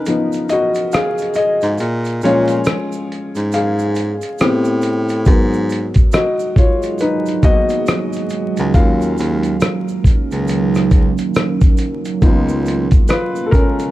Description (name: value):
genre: lo-fi hip hop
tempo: 69 BPM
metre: 4/4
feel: swing 61% on 16ths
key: G# dorian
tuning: A4 = 440 Hz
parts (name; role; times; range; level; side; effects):
- felt-muted upright piano; accompaniment; 0.0-13.9 s; E#3 to E#5; -18 LUFS; left 2 dB; cassette tape
- dusty soul sampler-style drum kit; drums; 0.1-13.9 s; hi-hat, kick drum, rim click; -14 LUFS; equal; vintage 12-bit sampler grit
- tube shaker; percussion; 0.1-13.9 s; none; -41 LUFS; right 11 dB; none
- warm baritone saxophone; bass; 1.6-12.9 s; C#2 to A#2; -19 LUFS; equal; none
- deep dark ambient pad; sustained chords; 6.4-13.9 s; C#3 to G#4; -21 LUFS; right 4 dB; chorus, built-in reverb
room: small room ambience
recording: dark, warm production, vinyl crackle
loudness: -13 LUFS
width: side -16 dB against mid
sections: 0.0-13.9 A section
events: break 0.0-5.3; felt piano solo 0.0-13.9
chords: 0.0 C#7; 1.8 A#m7; 4.4 Am7; 5.3 G#m7; 8.7 D#m7; 12.2 C#7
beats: 0.05 0.92 | 1.79 2.66 3.53 4.39 | 5.26 6.13 7.00 7.87 | 8.74 9.61 10.48 11.35 | 12.22 13.09